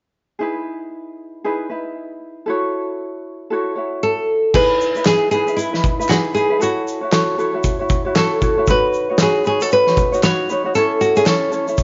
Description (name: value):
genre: acoustic pop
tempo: 116 BPM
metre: 4/4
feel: swing 60% on 16ths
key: E major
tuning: A4 = 441 Hz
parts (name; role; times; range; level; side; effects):
- ukulele; accompaniment; 0.4-11.8 s; C#4 to C#5; -23 LUFS; equal; none
- nylon-string guitar; melody; 4.0-11.8 s; E4 to C#5; -19 LUFS; equal; none
- loose indie drum kit; drums; 4.5-11.8 s; crash cymbal, kick drum, shaker, snare drum; -22 LUFS; equal; none
- group handclap; percussion; 5.1-11.4 s; none; -33 LUFS; equal; none
room: moderate echo chamber reverb, RT60 1.7 s, small room ambience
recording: nothing above 7.5 kHz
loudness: -18 LUFS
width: mono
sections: 0.4-4.5 A section; 4.5-11.8 B section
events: none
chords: 0.4 Emaj7; 2.5 F#m7; 4.5 Emaj7; 6.6 F#m7; 8.7 Badd9; 10.7 A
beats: | 0.40 0.92 1.44 1.96 | 2.48 2.99 3.51 4.03 | 4.55 5.06 5.58 6.10 | 6.61 7.13 7.65 8.16 | 8.68 9.20 9.71 10.23 | 10.75 11.26 11.78